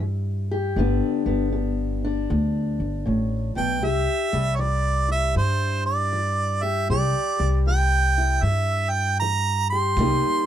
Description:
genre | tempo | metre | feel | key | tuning
acoustic country blues, solo or duo | 78 BPM | 4/4 | swing 64% on 8ths | unclear | A4 = 441 Hz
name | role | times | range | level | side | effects
fingerpicked steel-string acoustic guitar | accompaniment | 0.0-10.5 s | D2 to G4 | -27 LUFS | left 3 dB | none
upright bass | bass | 0.0-10.2 s | G1 to G2 | -24 LUFS | equal | none
clear harmonica | melody | 3.6-10.5 s | C5 to C6 | -23 LUFS | right 3 dB | none
kick drum | drums | 10.0-10.2 s | none | -30 LUFS | equal | none
room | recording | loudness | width
little or no reverb | close, detailed microphones | -20 LUFS | side -10 dB against mid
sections
0.0-10.5 A section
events
none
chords
0.0 C (rootless); 0.8 G; 3.8 C

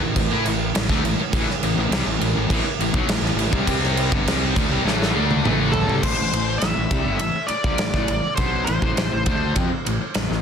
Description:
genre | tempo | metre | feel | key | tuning
hard rock | 102 BPM | 4/4 | straight | A minor | A4 = 441 Hz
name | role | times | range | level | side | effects
crunchy overdriven guitar | riff | 0.0-10.4 s | G2 to E4 | -29 LUFS | right 10 dB | none
distorted electric guitar | riff | 0.0-10.4 s | G2 to E4 | -27 LUFS | left 11 dB | distortion
heavy high-gain guitar | riff | 0.0-6.0 s | G2 to E4 | -27 LUFS | equal | distortion
fuzz fingered electric bass | bass | 0.0-10.4 s | G1 to A2 | -26 LUFS | equal | overdrive
big rock drum kit | drums | 0.2-10.4 s | crash cymbal, kick drum, ride cymbal, snare drum, toms | -22 LUFS | right 1 dB | none
high-gain lead guitar | melody | 5.7-9.5 s | A4 to E5 | -25 LUFS | left 1 dB | distortion, analog delay
room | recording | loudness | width
light reverb | dense, heavily limited modern master | -18 LUFS | side -7 dB against mid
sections
0.0-6.0 A section; 6.0-10.4 B section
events
drum fill 4.9-6.0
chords
0.0 Am

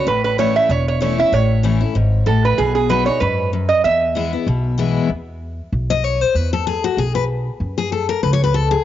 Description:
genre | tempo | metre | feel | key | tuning
bluegrass | 191 BPM | 4/4 | swing 55% on 8ths | E major | A4 = 440 Hz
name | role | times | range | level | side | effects
lap resonator guitar | melody | 0.0-4.7 s | G#4 to E5 | -17 LUFS | right 5 dB | cassette tape
picked steel-string acoustic guitar | accompaniment | 0.0-8.8 s | E2 to D#5 | -20 LUFS | left 6 dB | cassette tape
upright bass | bass | 0.1-8.7 s | E1 to F#2 | -20 LUFS | equal | none
room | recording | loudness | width
moderate spring reverb, RT60 1.9 s | home recording on cassette, nothing above 7.5 kHz | -15 LUFS | side -12 dB against mid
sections
0.0-5.1 A section; 5.1-8.8 B section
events
steel-string acoustic guitar solo 5.1-8.8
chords
0.1 A; 2.6 B; 3.8 E; 5.1 E5; 7.6 F#5

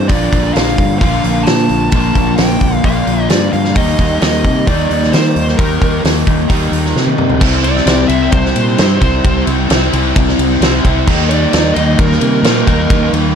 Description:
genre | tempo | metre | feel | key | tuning
rock, shoegaze and dream pop | 131 BPM | 4/4 | straight | unclear | A4 = 440 Hz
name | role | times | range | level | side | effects
dark smooth lead guitar | melody | 0.0-13.1 s | Bb4 to A5 | -20 LUFS | equal | overdrive, digital delay
overdriven electric guitar | riff | 0.0-13.3 s | Bb2 to F4 | -14 LUFS | equal | lush chorus
growling fingered electric bass | bass | 0.0-13.3 s | Bb1 to Eb3 | -16 LUFS | equal | overdrive
loose indie drum kit | drums | 0.1-13.2 s | crash cymbal, hi-hat, kick drum, ride cymbal, snare drum, toms | -15 LUFS | equal | none
room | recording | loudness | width
small room ambience | dark, warm production | -10 LUFS | side -7 dB against mid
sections
0.0-7.4 A section; 7.4-13.3 B section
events
drum fill 7.0-7.4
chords
0.1 Bbmaj7; 3.8 Eb; 7.4 C; 11.1 Eb

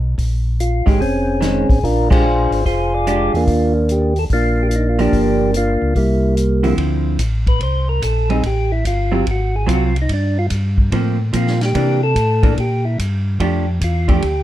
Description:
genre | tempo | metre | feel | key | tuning
soul jazz organ trio | 145 BPM | 4/4 | swing 66% on 8ths | D minor from 6.8 s | A4 = 439 Hz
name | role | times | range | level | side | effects
mellow tonewheel organ | bass | 0.0-14.4 s | F1 to C3 | -18 LUFS | equal | slow rotary speaker
vintage drum kit | drums | 0.2-14.4 s | crash cymbal, hi-hat, kick drum, ride cymbal, snare drum | -20 LUFS | equal | none
percussive tonewheel organ | melody | 0.6-14.4 s | G3 to D5 | -18 LUFS | equal | slow rotary speaker, plate reverb
vintage hollow-body jazz guitar | accompaniment | 0.9-14.2 s | D3 to G4 | -20 LUFS | right 2 dB | none
room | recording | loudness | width
light reverb | dark, warm production | -14 LUFS | side -13 dB against mid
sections
0.0-6.8 A section; 6.8-14.4 B section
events
band accent 2.0; tonewheel organ solo 6.8-14.4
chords
0.2 Bbm11; 1.8 Bb13; 3.5 Ebsus2; 5.1 Gm7; 6.0 C9; 6.8 Dm9; 8.4 G13sus4; 9.3 G#6; 10.1 Gm11; 11.7 C9; 13.4 F69

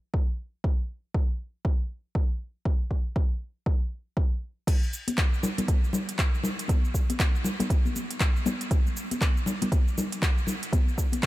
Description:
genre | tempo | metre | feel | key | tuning
house | 119 BPM | 4/4 | swing 60% on 16ths | none | none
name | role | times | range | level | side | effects
electronic kick drum | drums | 0.1-11.3 s | none | -24 LUFS | equal | overdrive
afro-pop drum kit | drums | 4.7-11.3 s | cabasa, crash cymbal, handclaps, hi-hat | -32 LUFS | equal | none
congas | percussion | 5.1-11.2 s | none | -31 LUFS | left 2 dB | none
room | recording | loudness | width
digital ambience | none | -25 LUFS | side -17 dB against mid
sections
0.0-4.7 A section; 4.7-11.3 B section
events
drop 4.7-11.3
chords
none

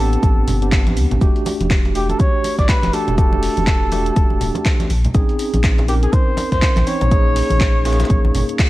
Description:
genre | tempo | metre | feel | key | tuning
deep house | 122 BPM | 4/4 | swing 59% on 16ths | unclear | A4 = 438 Hz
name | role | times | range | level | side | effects
trumpet with bucket mute | melody | 0.0-8.6 s | G4 to D5 | -23 LUFS | equal | analog delay
tine electric piano | stabs | 0.0-8.7 s | A3 to C5 | -23 LUFS | equal | medium stereo tremolo, sidechain pumping, tape echo
warm sub bass | bass | 0.0-8.4 s | D1 to Eb2 | -19 LUFS | equal | tube saturation, sidechain pumping
deep house drum kit | drums | 0.1-8.7 s | handclaps, hi-hat | -26 LUFS | equal | vintage 12-bit sampler grit
breakbeat sampler-style drum kit | drums | 0.2-8.7 s | hi-hat, shaker, snare drum | -34 LUFS | equal | sidechain pumping on perc, high-pass filter on perc, vintage 12-bit sampler grit, high-pass filter on snare, sidechain pumping on hats, high-pass filter on hats, high-pass filter on room
electronic kick drum | drums | 0.2-8.7 s | none | -16 LUFS | equal | vintage 12-bit sampler grit
congas | percussion | 0.2-8.7 s | none | -26 LUFS | equal | none
room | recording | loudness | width
little or no reverb | cassette tape | -14 LUFS | side -17 dB against mid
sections
0.0-8.7 A section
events
none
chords
0.0 Am11; 1.2 Em11; 4.9 Bbm11

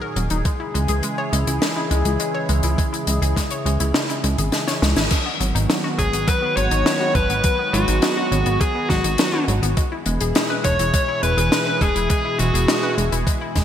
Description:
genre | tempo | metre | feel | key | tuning
synthwave | 103 BPM | 4/4 | straight | G# minor | A4 = 438 Hz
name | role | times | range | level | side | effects
chorused pulse-width pad | sustained chords | 0.0-13.6 s | A#2 to G#4 | -26 LUFS | equal | sidechain pumping
analog pluck | arpeggios | 0.0-13.6 s | F#3 to C#5 | -28 LUFS | left 2 dB | chorus, digital delay
chorused synth bass | bass | 0.2-13.6 s | D#1 to C#2 | -21 LUFS | equal | sidechain pumping
compact cocktail drum kit | drums | 0.2-13.6 s | crash cymbal, hi-hat, snare drum | -23 LUFS | left 1 dB | studio reverb, gated reverb
electronic kick drum | drums | 0.5-13.6 s | none | -21 LUFS | equal | studio reverb
dark smooth lead guitar | melody | 6.0-12.9 s | F#4 to C#5 | -22 LUFS | left 1 dB | overdrive, vintage 12-bit sampler grit, digital delay
airy dreamy lead | second line | 6.0-12.9 s | F#4 to C#5 | -29 LUFS | equal | chorus, digital delay
room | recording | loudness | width
moderate lush hall reverb, RT60 1.9 s, small room ambience | bright 1980s-style digital production | -17 LUFS | side -10 dB against mid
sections
0.0-5.1 A section; 5.1-13.6 B section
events
drum fill 4.5-5.1; band accent 5.0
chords
0.5 C#m; 5.1 G#m7; 9.8 E

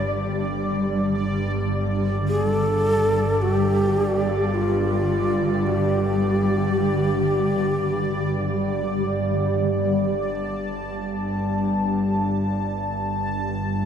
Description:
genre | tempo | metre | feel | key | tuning
ambient | free time | none | none | unclear | A4 = 441 Hz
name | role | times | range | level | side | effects
breathy mellow shakuhachi | melody | 0.0-9.1 s | F4 to D5 | -25 LUFS | equal | diffuse ambient delay
granular cloud pad | sustained chords | 0.0-13.9 s | D3 to G4 | -26 LUFS | left 1 dB | built-in reverb
bowed-like drone | drone | 0.0-13.9 s | G1 to G2 | -25 LUFS | equal | built-in reverb
bubbling stepped-filter texture | texture | 0.0-13.9 s | D5 to A5 | -29 LUFS | right 1 dB | chorus, built-in reverb
room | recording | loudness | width
wet huge ambient reverb, RT60 8.4 s | in a vast, echoing space | -20 LUFS | side -8 dB against mid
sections
0.0-10.2 A section; 10.2-13.9 B section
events
fade-in on ambient pad 10.2-13.9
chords
0.0 G5

